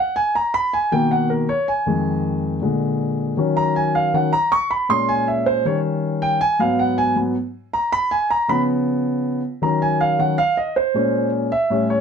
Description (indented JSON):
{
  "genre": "jazz",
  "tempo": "158 BPM",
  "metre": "4/4",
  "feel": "straight",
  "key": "unclear",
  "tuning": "A4 = 444 Hz",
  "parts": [
    { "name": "warm concert grand piano", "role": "solo", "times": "0.0-12.0 s", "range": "F2 to C#6", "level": "-17 LUFS", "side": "equal", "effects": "none" }
  ],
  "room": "light reverb",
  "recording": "none",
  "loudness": "-17 LUFS",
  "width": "side -6 dB against mid",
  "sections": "0.0-9.4 A section; 9.4-12.0 A section",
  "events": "grand piano solo 0.0-9.4, 9.4-12.0",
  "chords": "0.3 Bmaj7; 1.9 Fm7; 2.6 A#7; 3.4 D#m7; 4.9 A#m9b5; 5.7 D#7; 6.4 G#m7; 7.9 C#7; 9.4 Ebm7; 11.0 Bbm7"
}